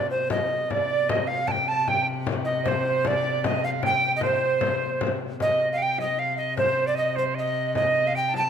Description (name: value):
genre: medieval dance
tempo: 153 BPM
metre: 3/4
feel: straight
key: C dorian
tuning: A4 = 440 Hz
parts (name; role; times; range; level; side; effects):
- tenor recorder; melody; 0.0-8.5 s; C5 to A5; -24 LUFS; right 1 dB; none
- warm viola da gamba; drone; 0.0-8.5 s; C3; -32 LUFS; left 4 dB; none
- frame drum; percussion; 0.3-8.5 s; none; -30 LUFS; left 6 dB; none
- bright reedy silver concert flute; second line; 0.7-8.5 s; C5 to A5; -27 LUFS; right 6 dB; none
room: light reverb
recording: close, detailed microphones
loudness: -22 LUFS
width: side -8 dB against mid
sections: 0.0-5.4 A section; 5.4-8.5 B section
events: none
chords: none